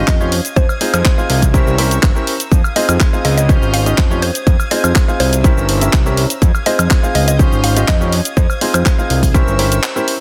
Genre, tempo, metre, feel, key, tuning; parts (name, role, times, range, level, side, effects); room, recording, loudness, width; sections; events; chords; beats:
piano house; 123 BPM; 4/4; straight; F minor; A4 = 440 Hz
mallet-like synth pluck; melody; 0.0-9.4 s; C5 to F5; -25 LUFS; equal; chorus, phaser, delay
warm chamber violin section; sustained chords; 0.0-10.2 s; Db4 to Ab6; -29 LUFS; equal; sidechain pumping
clear upright piano; riff; 0.0-10.1 s; C4 to F5; -21 LUFS; equal; sidechain pumping, delay
fat analog bass; bass; 0.0-9.8 s; G1 to F2; -18 LUFS; equal; sidechain pumping
electronic kick drum; drums; 0.1-9.4 s; -15 LUFS; equal
house drum kit; drums; 0.1-10.2 s; handclaps, hi-hat, shaker, woodblock; -22 LUFS; equal
little or no reverb; dense, heavily limited modern master; -14 LUFS; mono
0.0-10.2 A section
break 9.8-10.2
0.3 Fm7; 1.5 C7b9; 2.5 Fm7; 3.5 Dbmaj9#11; 4.2 Fm7; 5.4 C7b9; 6.4 Fm7; 7.4 Dbmaj9#11; 8.1 Fm7; 9.3 C7b9
0.08 | 0.56 1.05 1.54 2.03 | 2.52 3.00 3.49 3.98 | 4.47 4.96 5.44 5.93 | 6.42 6.91 7.39 7.88 | 8.37 8.86 9.35 9.83